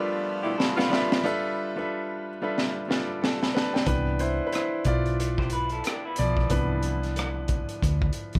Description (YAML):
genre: R&B, neo-soul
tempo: 91 BPM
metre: 4/4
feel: swing 58% on 16ths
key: C major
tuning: A4 = 439 Hz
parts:
  - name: clear concert grand piano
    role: accompaniment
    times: 0.0-8.4 s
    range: E3 to B5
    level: -31 LUFS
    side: equal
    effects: none
  - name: accordion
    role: sustained chords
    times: 0.0-1.2 s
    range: F3 to F4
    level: -37 LUFS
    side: equal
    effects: none
  - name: electric guitar through a small old amp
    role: second line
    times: 0.4-1.2, 5.4-7.0 s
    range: B3 to C5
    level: -36 LUFS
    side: equal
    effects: tape echo
  - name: warm horn section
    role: stabs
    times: 0.4-1.0 s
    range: B2 to F4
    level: -31 LUFS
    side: equal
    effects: none
  - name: crunchy breakbeat drum kit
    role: drums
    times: 0.6-8.4 s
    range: hi-hat, kick drum, rim click, snare drum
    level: -30 LUFS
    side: equal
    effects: none
  - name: woody fretless electric bass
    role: bass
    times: 3.9-8.4 s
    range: B1 to E2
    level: -30 LUFS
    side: equal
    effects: none
room: light reverb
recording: none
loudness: -27 LUFS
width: mono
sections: 0.0-1.2 A section; 1.2-3.9 B section; 3.9-8.4 C section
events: break 0.0-1.2, 1.2-3.9; band accent 0.0-1.2; drum fill 0.6-1.2, 2.5-3.9; grand piano solo 3.9-8.4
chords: 0.0 G13; 3.9 Cmaj9